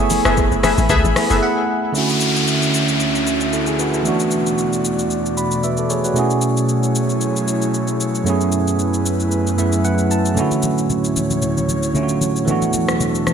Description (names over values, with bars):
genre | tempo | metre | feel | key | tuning
amapiano | 114 BPM | 4/4 | swing 55% on 16ths | unclear | A4 = 440 Hz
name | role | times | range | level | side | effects
bell-like tine electric piano | accompaniment | 0.0-13.3 s | F#2 to B5 | -18 LUFS | right 3 dB | wide subtle chorus, low-pass filter
airy breathy pad | sustained chords | 0.0-13.3 s | D2 to B5 | -22 LUFS | left 2 dB | chorus, low-pass filter
deep log drum bass | bass | 0.0-1.4 s | F#1 to C#2 | -20 LUFS | left 1 dB | none
deep house drum kit | drums | 0.1-13.3 s | hi-hat, kick drum, rim click, shaker | -24 LUFS | left 2 dB | gated reverb
congas | percussion | 0.1-1.3, 10.4-13.3 s | none | -26 LUFS | left 5 dB | none
glassy wavetable pluck | stabs | 0.2-1.4 s | G#4 to E5 | -20 LUFS | left 3 dB | chorus, ping-pong delay
downlifter | sound effects | 1.9-6.2 s | none | -23 LUFS | left 2 dB | none
room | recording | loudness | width
moderate lush hall reverb, RT60 1.6 s | bright 1980s-style digital production | -16 LUFS | side -7 dB against mid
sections
0.0-1.9 A section; 1.9-13.3 B section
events
drop 0.0-1.9; tine electric piano fill 1.2-1.9, 5.1-6.2, 9.3-10.4; break 1.4-1.9; filter sweep 1.9-13.3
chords
0.0 F#m11; 1.9 Dmaj9; 4.1 E9sus4; 6.2 B13sus4; 8.3 F#m11; 10.4 Dmaj9; 12.5 E9sus4